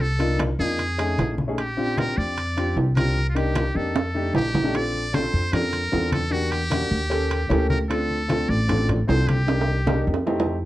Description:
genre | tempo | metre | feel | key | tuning
Afro-Cuban jazz | 152 BPM | 4/4 | straight | Bb major | A4 = 438 Hz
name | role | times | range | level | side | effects
trumpet with metal mute | melody | 0.0-10.1 s | F4 to D5 | -28 LUFS | equal | none
upright bass | bass | 0.0-10.6 s | A1 to F2 | -25 LUFS | equal | none
congas | percussion | 0.0-10.7 s | none | -28 LUFS | left 1 dB | none
warm upright piano | accompaniment | 0.2-10.5 s | A3 to A4 | -26 LUFS | left 1 dB | none
timbales | percussion | 0.2-10.5 s | none | -28 LUFS | right 4 dB | none
room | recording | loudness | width
light reverb | worn, warbling old tape, cassette tape, warbly pitch drift | -20 LUFS | side -15 dB against mid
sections
0.0-4.7 A section; 4.7-10.7 B section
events
drum fill 4.0-4.7, 9.5-10.7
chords
0.0 Cm11; 0.8 F7alt; 1.6 Bb6; 3.2 Cm7; 4.0 F13; 4.7 Bbmaj7; 6.3 Em7b5; 7.1 Eb7#11; 7.9 Dm7; 9.5 Cm7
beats
| 0.00 0.40 0.79 1.19 | 1.58 1.98 2.37 2.77 | 3.16 3.56 3.95 4.35 | 4.74 5.14 5.53 5.93 | 6.32 6.71 7.11 7.50 | 7.90 8.29 8.69 9.08 | 9.48 9.87 10.26

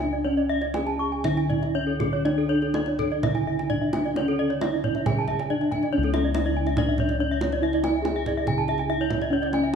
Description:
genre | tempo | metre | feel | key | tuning
Balinese gamelan | 120-142 BPM | 4/4 | straight | C# pelog | A4 = 445 Hz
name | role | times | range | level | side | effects
gamelan-type bronze metallophone | melody | 0.0-9.7 s | C#4 to G#4-45c | -27 LUFS | equal | tape echo
gamelan-type bronze metallophone | arpeggios | 0.0-9.6 s | G#4-45c to C#6 | -30 LUFS | left 5 dB | none
gamelan-type bossed gongs | bass | 0.0-9.8 s | C#2 to E4-50c | -27 LUFS | left 1 dB | none
kendang | percussion | 0.0-9.6 s | none | -31 LUFS | right 3 dB | none
gamelan-type bronze metallophone | arpeggios | 0.1-9.7 s | A4-40c to A5-40c | -31 LUFS | right 9 dB | none
room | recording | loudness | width
moderate recital hall reverb, RT60 1.6 s | none | -22 LUFS | side -7 dB against mid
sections
0.0-5.9 A section; 5.9-9.8 B section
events
none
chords
none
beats
| 0.25 0.75 1.25 1.75 | 2.25 2.75 3.23 3.70 | 4.17 4.62 5.07 5.50 | 5.93 6.35 6.78 7.20 | 7.62 8.05 8.47 8.89 | 9.32 9.74

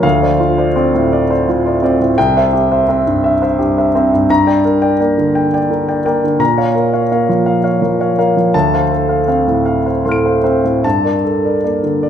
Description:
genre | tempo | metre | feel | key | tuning
neoclassical minimalist piano | 50-58 BPM (dotted quarters) | 6/8 | rubato | G dorian | A4 = 442 Hz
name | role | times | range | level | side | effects
warm grand piano | solo | 0.0-12.1 s | C2 to D7 | -11 LUFS | equal | none
room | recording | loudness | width
wet recital hall reverb, RT60 1.3 s | recorded in a church or concert hall | -11 LUFS | side -9 dB against mid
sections
0.0-12.1 A section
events
none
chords
0.0 Dm7; 2.2 C; 4.3 Gm; 6.4 Bbm; 8.5 Dm7; 10.8 Gmadd9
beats
| 0.04 1.11 | 2.17 3.23 | 4.29 5.35 | 6.40 7.46 | 8.54 9.66 | 10.84 12.02

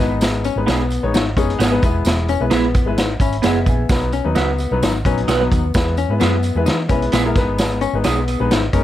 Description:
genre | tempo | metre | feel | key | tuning
uptempo 1960s-style soul | 130 BPM | 4/4 | straight | unclear | A4 = 440 Hz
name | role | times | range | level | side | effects
clear concert grand piano | accompaniment | 0.0-8.8 s | F#3 to B5 | -22 LUFS | left 3 dB | none
hollow-body jazz guitar | riff | 0.0-8.8 s | B3 to D#4 | -24 LUFS | left 8 dB | none
hollow-body short-scale fingered electric bass | bass | 0.0-8.8 s | E1 to E3 | -21 LUFS | equal | none
vintage drum kit | drums | 0.2-8.8 s | hi-hat, kick drum, snare drum | -19 LUFS | right 1 dB | none
tambourine | percussion | 0.2-8.8 s | none | -37 LUFS | right 6 dB | none
electric guitar through a small old amp | stabs | 0.7-8.2 s | B3 to B4 | -24 LUFS | right 8 dB | phaser, tape echo
room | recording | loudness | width
light reverb | cassette tape | -15 LUFS | side -12 dB against mid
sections
0.0-8.8 A section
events
grand piano fill 0.0, 3.0-3.9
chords
0.0 G#m; 1.8 E; 3.9 B; 5.7 E; 7.4 G#m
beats
| 0.21 0.67 1.13 1.59 | 2.06 2.52 2.98 3.44 | 3.90 4.36 4.82 5.28 | 5.75 6.21 6.67 7.13 | 7.59 8.05 8.51

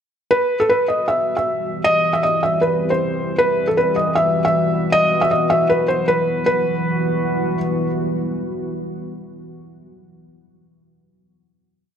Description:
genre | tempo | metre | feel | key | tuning
hip hop, trap | 156 BPM | 4/4 | half-time | E harmonic minor | A4 = 440 Hz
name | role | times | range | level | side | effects
felt-muted upright piano | melody | 0.3-7.6 s | A4 to E5 | -17 LUFS | equal | none
deep dark ambient pad | sustained chords | 1.0-9.5 s | E3 to G4 | -22 LUFS | equal | chorus, built-in reverb
room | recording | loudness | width
moderate lush hall reverb, RT60 2.4 s | none | -16 LUFS | side -8 dB against mid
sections
0.3-6.5 breakdown; 6.5-9.5 final chord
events
none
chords
0.3 Emadd9; 1.8 C; 3.4 Emadd9; 4.9 Bsus4; 6.5 Emadd9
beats
| 0.31 0.69 1.08 1.46 | 1.85 2.23 2.62 3.00 | 3.38 3.77 4.15 4.54 | 4.92 5.31 5.69 6.08 | 6.46 6.85 7.23 7.62 | 8.00 8.38 8.77 9.15

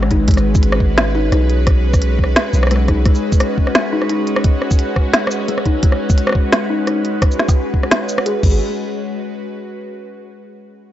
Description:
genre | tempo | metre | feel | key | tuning
half-time drum and bass | 173 BPM | 4/4 | swing 54% on 16ths, half-time | G# minor | A4 = 440 Hz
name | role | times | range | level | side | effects
bowed-like drone | sustained chords | 0.0-10.0 s | G#3 to B4 | -21 LUFS | equal | built-in reverb, phaser, sidechain pumping
kalimba | arpeggios | 0.0-8.6 s | G#3 to G#4 | -24 LUFS | left 3 dB | low-pass filter, tape echo
long sustained 808-style bass | bass | 0.0-3.0, 8.4-8.6 s | G#1 to B1 | -16 LUFS | equal | none
organic electronic drum kit | drums | 0.0-8.5 s | crash cymbal, hi-hat, rim click, shaker, snare drum | -18 LUFS | equal | none
electronic kick drum | drums | 0.1-8.5 s | none | -14 LUFS | equal | none
room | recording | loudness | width
light reverb | dry, gritty hardware recording, cassette tape, nothing above 7.7 kHz | -13 LUFS | side -12 dB against mid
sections
0.0-8.6 A section; 8.6-10.0 B section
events
filter sweep on kalimba 0.0-8.6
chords
0.0 G#m; 8.4 G#sus4; 8.6 G#m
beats
| 0.28 0.63 0.98 1.32 | 1.67 2.02 2.36 2.71 | 3.06 3.40 3.75 4.10 | 4.45 4.79 5.14 5.49 | 5.83 6.18 6.53 6.87 | 7.22 7.57 7.91 8.26 | 8.61 8.95 9.30 9.65

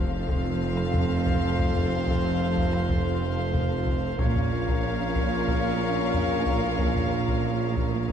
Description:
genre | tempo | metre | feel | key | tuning
cinematic, epic orchestral film score | 92 BPM | 4/4 | straight | unclear | A4 = 441 Hz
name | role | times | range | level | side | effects
rich studio violin section | melody | 0.0-8.1 s | F5 | -36 LUFS | left 2 dB | none
warm symphonic violin section | second line | 0.0-8.1 s | A4 to Bb4 | -36 LUFS | left 4 dB | none
warm symphonic viola section | accompaniment | 0.0-8.1 s | C4 to Db4 | -35 LUFS | equal | none
mellow French horn section | sustained chords | 0.0-8.1 s | A3 to F4 | -33 LUFS | left 8 dB | none
clear trumpet | stabs | 0.0-8.1 s | C5 to Db5 | -34 LUFS | right 3 dB | none
clear symphonic double bass section | bass | 0.0-8.1 s | F1 to Bb1 | -31 LUFS | right 4 dB | none
mellow tuba | bass | 0.0-8.1 s | F1 to Bb1 | -32 LUFS | right 4 dB | none
rich symphonic cello section | bass | 0.0-8.1 s | F2 to Bb2 | -31 LUFS | right 1 dB | none
solo taiko drums | drums | 0.3-8.1 s | none | -29 LUFS | left 1 dB | none
room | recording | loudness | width
moderate scoring stage reverb, RT60 1.7 s | dark, warm production | -23 LUFS | side -8 dB against mid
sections
0.0-8.1 A section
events
none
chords
0.0 F; 4.2 Bbm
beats
0.27 0.92 | 1.57 2.23 2.88 3.53 | 4.18 4.83 5.49 6.14 | 6.79 7.44 8.10

